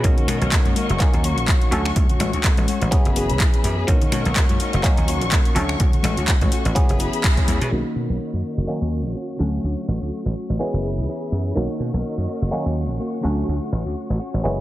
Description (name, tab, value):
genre	filtered disco house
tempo	125 BPM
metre	4/4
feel	swing 56% on 16ths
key	B major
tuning	A4 = 436 Hz
part	muted clav	accompaniment	0.0-14.6 s	D3 to A#4	-27 LUFS	right 1 dB	overdrive, phaser, sidechain pumping, low-pass filter
part	warm studio string section	sustained chords	0.0-14.6 s	F#4 to C#6	-31 LUFS	left 1 dB	vintage 12-bit sampler grit, sidechain pumping, low-pass filter
part	direct-recorded clean electric guitar	riff	0.0-14.6 s	D#3 to G#4	-28 LUFS	left 2 dB	analog chorus, sidechain pumping, low-pass filter
part	dry thumbed slap bass	bass	0.0-14.6 s	F#1 to B2	-23 LUFS	equal	sidechain pumping, low-pass filter
part	electronic kick drum	drums	0.0-7.5 s	none	-19 LUFS	equal	none
part	house drum kit	drums	0.0-7.7 s	finger snaps, handclaps, hi-hat	-26 LUFS	left 1 dB	overdrive, sidechain pumping on hats
part	tube shaker and congas	percussion	0.0-7.7 s	none	-30 LUFS	left 3 dB	sidechain pumping on perc, low-pass filter on perc
room	light reverb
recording	none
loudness	-18 LUFS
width	side -15 dB against mid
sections	0.0-7.7 A section; 7.7-14.6 B section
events	band accent 7.2; filter sweep 7.7-14.6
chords	0.0 Bmaj9; 1.0 D#m7; 1.7 Dmaj7; 2.9 F#9sus4; 3.9 Bmaj9; 4.8 D#m7; 5.6 Dmaj7; 6.8 F#9sus4; 7.7 Bmaj9; 8.7 D#m7; 9.4 Dmaj7; 10.6 F#9sus4; 11.6 Bmaj9; 12.5 D#m7; 13.2 Dmaj7